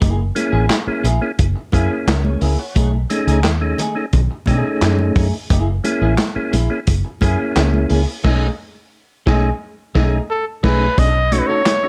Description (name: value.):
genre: funk.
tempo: 88 BPM.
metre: 4/4.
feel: straight.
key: unclear.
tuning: A4 = 442 Hz.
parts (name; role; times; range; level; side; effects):
clean electric guitar; accompaniment; 0.0-11.7 s; A3 to A4; -27 LUFS; equal; lush chorus, plate reverb.
vintage muted fingered electric bass; bass; 0.0-11.4 s; F#1 to B2; -20 LUFS; equal; none.
vintage drum kit; drums; 0.0-11.8 s; crash cymbal, handclaps, hi-hat, kick drum, snare drum; -22 LUFS; equal; none.
congas; percussion; 0.0-11.8 s; none; -28 LUFS; equal; none.
percussive tonewheel organ; stabs; 0.4-11.9 s; A3 to F#5; -24 LUFS; equal; overdrive, chorus vibrato, fast rotary speaker, plate reverb.
breathy trumpet; melody; 10.3-11.9 s; A4 to D#5; -20 LUFS; equal; plate reverb.
room: light reverb.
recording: dark, warm production.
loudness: -17 LUFS.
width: mono.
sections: 0.0-11.0 A section.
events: band accent 8.2-11.0.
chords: 0.0 F#9; 2.8 B13; 5.5 F#9; 8.2 B13; 11.0 B9.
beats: | 0.02 0.70 1.39 2.07 | 2.76 3.45 4.13 4.82 | 5.50 6.19 6.87 7.56 | 8.24 8.93 9.61 10.30 | 10.98 11.67.